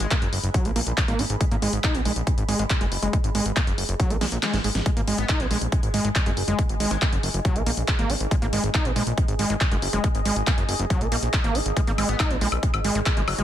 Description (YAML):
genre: psychedelic trance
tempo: 139 BPM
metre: 4/4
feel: straight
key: G# minor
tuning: A4 = 440 Hz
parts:
  - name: metallic wobble bass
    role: second line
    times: 0.0-0.2, 5.2-7.1, 12.1-13.4 s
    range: F#3 to B3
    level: -38 LUFS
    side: left 5 dB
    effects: none
  - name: fat analog bass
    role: bass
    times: 0.0-13.4 s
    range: F#1 to A#1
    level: -26 LUFS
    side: equal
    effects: none
  - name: big-room dance drum kit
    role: drums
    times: 0.0-13.4 s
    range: handclaps, hi-hat, snare drum, woodblock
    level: -28 LUFS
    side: left 2 dB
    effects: none
  - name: deep dark ambient pad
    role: texture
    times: 0.0-13.4 s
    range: G#4 to C#6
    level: -34 LUFS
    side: right 1 dB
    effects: chorus, built-in reverb, sidechain pumping
  - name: overdriven acid bass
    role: riff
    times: 0.1-13.4 s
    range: F#3 to D#4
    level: -28 LUFS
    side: right 1 dB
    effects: distortion, auto-pan, sidechain pumping, dub echo
  - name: electronic kick drum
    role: drums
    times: 0.1-13.1 s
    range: none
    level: -23 LUFS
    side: equal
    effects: none
room: light reverb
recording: dense, heavily limited modern master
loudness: -21 LUFS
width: side -11 dB against mid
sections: 0.0-13.4 A section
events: fade-in on ambient pad 0.0-13.4; filter sweep on acid bass 0.0-13.4; drum fill 4.2-4.9; kick drops out 4.4-4.9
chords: 0.0 G#5